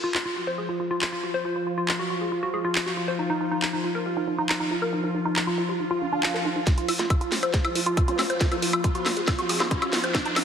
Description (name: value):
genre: psychedelic trance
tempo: 138 BPM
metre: 4/4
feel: straight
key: unclear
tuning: A4 = 440 Hz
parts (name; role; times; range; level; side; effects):
- evolving wavetable pad; sustained chords; 0.4-10.4 s; F3 to F4; -30 LUFS; equal; phaser, built-in reverb, sidechain pumping
- woody wave-folded pluck; riff; 0.0-10.4 s; D4 to C5; -27 LUFS; equal; chorus, auto-pan, sidechain pumping, ping-pong delay
- garage drum kit; drums; 0.1-10.4 s; handclaps, hi-hat, snare drum, woodblock; -28 LUFS; equal; none
- swell and riser; sound effects; 6.0-10.4 s; none; -34 LUFS; right 1 dB; none
- electronic kick drum; drums; 6.7-10.2 s; none; -24 LUFS; equal; none
- vowel-sweep wobble bass; second line; 8.1-9.8 s; F3 to C4; -39 LUFS; left 3 dB; none
room: wet lush hall reverb, RT60 2.0 s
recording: heavily compressed radio sound, multiband compression, high-pass filter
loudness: -23 LUFS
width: side -8 dB against mid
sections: 0.0-6.7 A section; 6.7-10.4 B section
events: filter sweep on ambient pad 0.0-6.7; swell 6.0-6.7; build-up 6.7-10.4; drum fill 6.7-10.4; riser 6.7-10.4; filter sweep on synth arpeggio sound 6.7-10.4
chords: 0.0 F5; 3.2 Eb5; 6.7 F5